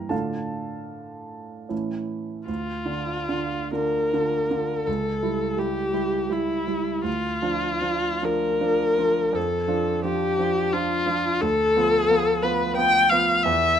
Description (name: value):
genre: classical, romantic duo for viola and grand piano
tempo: 65-90 BPM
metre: 3/4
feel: rubato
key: D minor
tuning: A4 = 440 Hz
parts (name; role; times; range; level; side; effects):
- warm concert grand piano; accompaniment; 0.0-13.8 s; C#2 to Bb5; -26 LUFS; right 4 dB; none
- warm viola; melody; 2.5-13.8 s; E4 to G5; -22 LUFS; left 3 dB; none
room: light reverb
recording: close, detailed microphones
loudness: -21 LUFS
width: side -8 dB against mid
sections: 0.0-2.5 A section; 2.5-13.8 B section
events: none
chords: 0.1 Dm/A; 1.7 A; 2.5 Dm; 4.9 A7/C#; 7.1 Dm; 9.4 Dm/F; 11.4 Bdim/D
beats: | 0.12 0.93 1.71 | 2.48 3.31 4.15 | 4.88 5.60 6.33 | 7.07 7.84 8.65 | 9.37 10.06 10.74 | 11.43 12.11 12.79 | 13.47